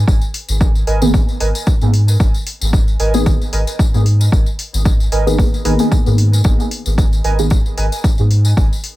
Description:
dub techno; 113 BPM; 4/4; swing 55% on 16ths; G# minor; A4 = 440 Hz
soft dub sub bass; bass; 0.0-8.7 s; G#1 to G#2; -15 LUFS; equal; sidechain pumping
electronic kick drum; drums; 0.1-8.7 s; -14 LUFS; equal
tambourine; percussion; 0.1-8.8 s; -28 LUFS; left 4 dB
electronic hi-hat; drums; 0.3-9.0 s; -26 LUFS; left 2 dB
warbly lo-fi synth keys; riff; 0.9-7.9 s; A#4 to G#5; -25 LUFS; right 4 dB; chorus, sidechain pumping, dub echo
deep mellow chord stab; stabs; 1.0-7.6 s; D#3 to G#4; -20 LUFS; equal; chorus, phaser, sidechain pumping, dub echo
little or no reverb; -12 LUFS; side -17 dB against mid
0.0-9.0 A section
0.0 G#madd9

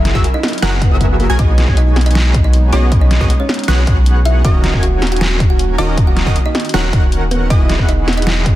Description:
future bass; 157 BPM; 4/4; half-time; B major; A4 = 438 Hz
kalimba; melody; 0.0-8.4 s; A#3 to F#5; -23 LUFS; right 2 dB; sidechain pumping, digital delay
airy breathy pad; sustained chords; 0.0-8.6 s; D#3 to A#4; -28 LUFS; equal; chorus, sidechain pumping
wide unison pluck; arpeggios; 0.0-8.6 s; D#6 to G#6; -28 LUFS; right 1 dB; sidechain pumping
supersaw stab; riff; 0.0-8.6 s; D#3 to G#5; -21 LUFS; equal; sidechain pumping
saturated sub bass; bass; 0.0-8.6 s; D#1 to B1; -14 LUFS; equal; sidechain pumping
dubstep drum kit; drums; 0.1-8.5 s; hi-hat, snare drum; -20 LUFS; equal
electronic kick drum; drums; 0.1-8.5 s; -13 LUFS; equal
swell; sound effects; 0.8-1.4 s; -27 LUFS; left 3 dB
digital ambience; dense, heavily limited modern master; -11 LUFS; side -15 dB against mid
0.0-8.6 A section
swell 0.8-1.4
0.0 F#7; 1.4 B6; 4.4 D#m7; 7.5 Emaj7

